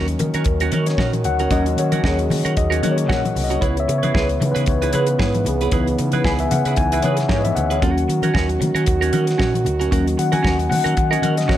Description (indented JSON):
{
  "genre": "disco",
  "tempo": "114 BPM",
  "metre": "4/4",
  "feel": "swing 56% on 16ths",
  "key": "unclear",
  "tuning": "A4 = 440 Hz",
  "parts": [
    { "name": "mellow tine electric piano", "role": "accompaniment", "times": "0.0-11.6 s", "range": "E3 to G#5", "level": "-22 LUFS", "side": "left 4 dB", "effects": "analog chorus" },
    { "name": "semi-hollow electric guitar", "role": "accompaniment", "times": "0.0-11.6 s", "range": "C#4 to B4", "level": "-25 LUFS", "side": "right 7 dB", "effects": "phaser" },
    { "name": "warm French horn section", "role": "sustained chords", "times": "0.0-11.6 s", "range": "C#3 to F#4", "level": "-26 LUFS", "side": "right 3 dB", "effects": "none" },
    { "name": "overdriven fingered electric bass", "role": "bass", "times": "0.0-11.6 s", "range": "B#1 to D#3", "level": "-22 LUFS", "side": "equal", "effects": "none" },
    { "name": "damped 70s drum kit", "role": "drums", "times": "0.1-11.6 s", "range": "hi-hat, kick drum, snare drum", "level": "-23 LUFS", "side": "equal", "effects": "none" },
    { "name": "congas", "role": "percussion", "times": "0.2-11.6 s", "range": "none", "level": "-27 LUFS", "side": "left 3 dB", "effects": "none" }
  ],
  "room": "light reverb",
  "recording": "none",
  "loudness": "-16 LUFS",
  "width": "side -12 dB against mid",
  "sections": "0.0-11.6 A section",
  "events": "tine electric piano solo 0.0-11.6",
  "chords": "0.0 D#m7; 3.6 C#m7; 7.8 D#m7",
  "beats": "0.46 0.98 | 1.51 2.04 2.56 3.09 | 3.62 4.14 4.67 5.19 | 5.72 6.25 6.77 7.30 | 7.82 8.35 8.87 9.40 | 9.92 10.45 10.97 11.49"
}